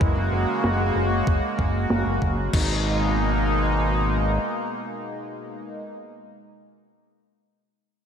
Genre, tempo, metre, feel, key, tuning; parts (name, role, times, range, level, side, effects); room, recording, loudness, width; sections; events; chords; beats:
synthwave; 95 BPM; 4/4; straight; G# minor; A4 = 439 Hz
chorused pulse-width pad; sustained chords; 0.0-5.8 s; B2 to F#4; -25 LUFS; equal; sidechain pumping
fat analog bass; bass; 0.0-4.4 s; F#1 to G#1; -24 LUFS; equal
clean 12-bit digital drum machine; drums; 0.0-2.7 s; crash cymbal, hi-hat, snare drum; -29 LUFS; left 1 dB; low-pass filter on hats, studio reverb, low-pass filter on snare, low-pass filter on cymbals, gated reverb
electronic kick drum; drums; 0.0-2.7 s; -23 LUFS; equal; studio reverb
moderate lush hall reverb, RT60 1.8 s, digital ambience; bright 1980s-style digital production; -21 LUFS; side -8 dB against mid
0.0-2.5 A section; 2.5-5.1 B section
0.0 F#add9; 2.5 G#madd9
| 0.01 0.64 1.27 1.90 | 2.54 3.17 3.80 4.43